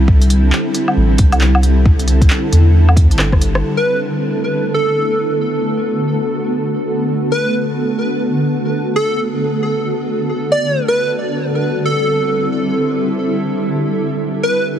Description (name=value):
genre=future garage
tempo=135 BPM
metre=4/4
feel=swing 62% on 16ths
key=B phrygian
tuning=A4 = 440 Hz
part: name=granular cloud pad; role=sustained chords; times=0.0-14.8 s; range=D3 to A4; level=-17 LUFS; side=equal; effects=built-in reverb, sidechain pumping
part: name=soft dub sub bass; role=bass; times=0.0-3.6 s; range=G1 to E2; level=-12 LUFS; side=equal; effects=sidechain pumping
part: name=electronic kick drum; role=drums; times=0.1-3.4 s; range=none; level=-13 LUFS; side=equal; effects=none
part: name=deep house drum kit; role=drums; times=0.2-3.6 s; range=handclaps, hi-hat, rim click, woodblock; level=-21 LUFS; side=left 1 dB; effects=low-pass filter on hats, low-pass filter on snare, low-pass filter on perc
part: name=plucky unison lead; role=melody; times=3.8-14.7 s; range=A4 to D5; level=-19 LUFS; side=equal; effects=tape echo
room=light reverb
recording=heavily compressed radio sound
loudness=-13 LUFS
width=side -10 dB against mid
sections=0.0-3.6 A section; 3.6-14.8 B section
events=drum fill 3.2-3.6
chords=0.0 C69; 3.6 Bm7; 10.7 C69